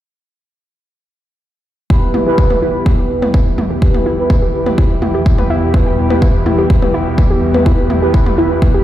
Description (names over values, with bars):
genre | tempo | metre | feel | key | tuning
melodic techno | 125 BPM | 4/4 | straight | E minor | A4 = 439 Hz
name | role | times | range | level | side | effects
lush unison pad | sustained chords | 1.9-8.8 s | B2 to G4 | -20 LUFS | left 2 dB | chorus, sidechain pumping
warbly dusty pluck | arpeggios | 1.9-8.8 s | E4 to B4 | -20 LUFS | left 1 dB | chorus, sidechain pumping, dub echo
analog synth brass | stabs | 1.9-8.8 s | E4 to B4 | -18 LUFS | right 2 dB | chorus, sidechain pumping, dub echo
bowed-like drone | drone | 2.7-8.8 s | E2 to B2 | -21 LUFS | equal | built-in reverb, sidechain pumping
electronic kick drum | drums | 1.9-8.7 s | none | -13 LUFS | equal | none
electronic toms | drums | 2.1-8.7 s | none | -22 LUFS | right 1 dB | none
room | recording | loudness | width
light reverb, digital ambience | played on a big sound system in a bare room, stone room reverb | -11 LUFS | side -13 dB against mid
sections
1.9-8.8 A section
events
none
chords
1.9 Em